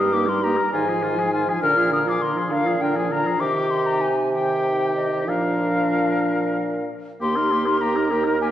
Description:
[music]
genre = quick classical-period movement for wind quintet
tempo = 61-69 BPM (dotted quarters)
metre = 6/8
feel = rubato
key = Eb major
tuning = A4 = 439 Hz
[part]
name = hollow concert flute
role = melody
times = 0.0-8.5 s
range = Eb5 to F6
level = -24 LUFS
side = left 4 dB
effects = none
[part]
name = warm oboe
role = second line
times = 0.0-8.5 s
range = F4 to Bb4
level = -28 LUFS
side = left 1 dB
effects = none
[part]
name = clear French horn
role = accompaniment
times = 0.0-8.5 s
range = D3 to Eb4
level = -28 LUFS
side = right 1 dB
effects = none
[part]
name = dark clarinet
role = accompaniment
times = 0.0-8.5 s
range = D4 to Bb4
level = -27 LUFS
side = right 2 dB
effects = none
[part]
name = warm bassoon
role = bass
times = 0.0-8.5 s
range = Eb2 to C3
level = -24 LUFS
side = right 2 dB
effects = none
[sound]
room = wet scoring stage reverb, RT60 1.8 s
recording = worn, warbling old tape, cassette tape, warbly pitch drift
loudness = -19 LUFS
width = side -11 dB against mid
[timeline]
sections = 0.0-7.2 A section; 7.2-8.5 B section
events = none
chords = 0.0 Eb/G; 0.7 Fm7/Ab; 1.6 Bb7; 3.4 Cm; 5.3 Bb; 7.2 Eb

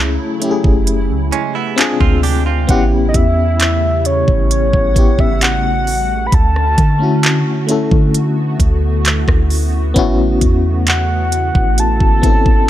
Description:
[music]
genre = contemporary R&B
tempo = 66 BPM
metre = 4/4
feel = straight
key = unclear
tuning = A4 = 440 Hz
[part]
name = FM electric piano with tremolo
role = accompaniment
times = 0.0-12.7 s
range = A3 to A4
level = -19 LUFS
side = left 4 dB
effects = none
[part]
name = hollow soft pad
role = sustained chords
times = 0.0-12.7 s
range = B#2 to F#5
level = -23 LUFS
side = right 2 dB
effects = ensemble chorus, sidechain pumping
[part]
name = soft 808-style bass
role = bass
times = 0.0-12.7 s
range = F#1 to D3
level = -16 LUFS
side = equal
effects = none
[part]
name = smooth R&B drum kit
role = drums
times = 0.4-12.7 s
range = handclaps, hi-hat, kick drum, rim click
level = -14 LUFS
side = equal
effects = none
[part]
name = direct-recorded clean electric guitar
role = arpeggios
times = 1.3-2.9 s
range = G#3 to G4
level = -21 LUFS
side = right 10 dB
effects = lush chorus, digital delay
[part]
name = soft octave-layered synth lead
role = melody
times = 2.7-12.7 s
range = C#5 to B5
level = -18 LUFS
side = left 1 dB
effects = chorus, digital delay
[sound]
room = digital ambience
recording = none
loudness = -12 LUFS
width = side -12 dB against mid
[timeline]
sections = 0.0-12.7 A section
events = none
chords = 0.0 F#m7; 1.8 A#9; 2.7 A7; 6.3 Dmaj7; 10.0 A69

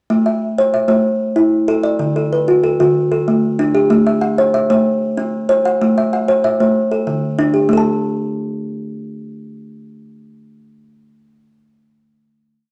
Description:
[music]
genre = southern african traditional, mbira-style interlocking cycle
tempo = 126 BPM (dotted quarters)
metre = 12/8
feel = straight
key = A equiheptatonic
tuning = A4 = 442 Hz
[part]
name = kalimba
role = solo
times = 0.1-11.2 s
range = D3 to A5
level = -16 LUFS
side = equal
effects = none
[sound]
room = moderate large studio reverb, RT60 0.9 s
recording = none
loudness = -16 LUFS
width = mono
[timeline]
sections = 0.1-7.7 A section; 7.7-11.5 final note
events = none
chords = 0.1 Am; 2.0 D; 3.9 Am; 4.8 C; 5.8 Am; 6.7 D5; 7.7 N.C.

